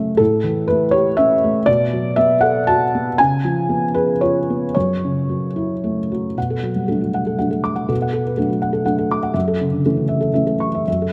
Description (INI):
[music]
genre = neoclassical minimalist piano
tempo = 109-126 BPM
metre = 3/4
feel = rubato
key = B minor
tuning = A4 = 437 Hz
[part]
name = felt-muted upright piano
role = solo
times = 0.0-11.1 s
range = F#2 to D6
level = -18 LUFS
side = equal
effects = none
[sound]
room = moderate concert hall reverb, RT60 2.4 s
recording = none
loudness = -18 LUFS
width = mono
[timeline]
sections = 0.0-6.4 A section; 6.4-11.1 B section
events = none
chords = 0.2 A7; 1.7 Bm7; 3.2 C#7; 4.7 F#m7; 6.4 Bm7; 9.3 F#m7